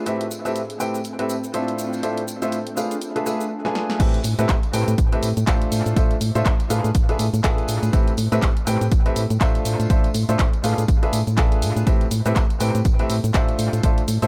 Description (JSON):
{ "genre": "piano house", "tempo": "122 BPM", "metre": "4/4", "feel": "swing 58% on 16ths", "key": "A minor", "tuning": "A4 = 440 Hz", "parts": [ { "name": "clear upright piano", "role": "riff", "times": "0.0-14.3 s", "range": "A2 to G#5", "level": "-27 LUFS", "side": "equal", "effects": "sidechain pumping, analog delay" }, { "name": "granular cloud pad", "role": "texture", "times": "0.0-3.5 s", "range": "A3 to G5", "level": "-33 LUFS", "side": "equal", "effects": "built-in reverb, sidechain pumping" }, { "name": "punchy analog drum machine", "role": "drums", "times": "0.1-14.3 s", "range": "crash cymbal, handclaps, hi-hat, shaker, snare drum", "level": "-32 LUFS", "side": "equal", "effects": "analog delay" }, { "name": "tambourine", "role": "percussion", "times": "0.1-14.3 s", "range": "none", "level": "-43 LUFS", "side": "equal", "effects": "none" }, { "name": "solid FM bass", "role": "bass", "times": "4.0-14.3 s", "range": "A1 to A2", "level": "-24 LUFS", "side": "equal", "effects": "sidechain pumping" }, { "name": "electronic kick drum", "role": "drums", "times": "4.0-13.9 s", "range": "none", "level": "-22 LUFS", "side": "equal", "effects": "none" } ], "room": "little or no reverb", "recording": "echo-heavy mix", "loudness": "-21 LUFS", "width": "mono", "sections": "0.0-4.0 A section; 4.0-14.3 B section", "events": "drum fill 3.6-4.0; drop 4.0-14.3", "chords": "0.1 Am9; 1.8 Dm9/A; 2.8 E7b9/A; 4.0 Am9; 5.7 Dm9/A; 6.7 E7b9/A; 7.9 Am9; 9.7 Dm9/A; 10.6 E7b9/A; 11.9 Am9; 13.6 Dm9/A" }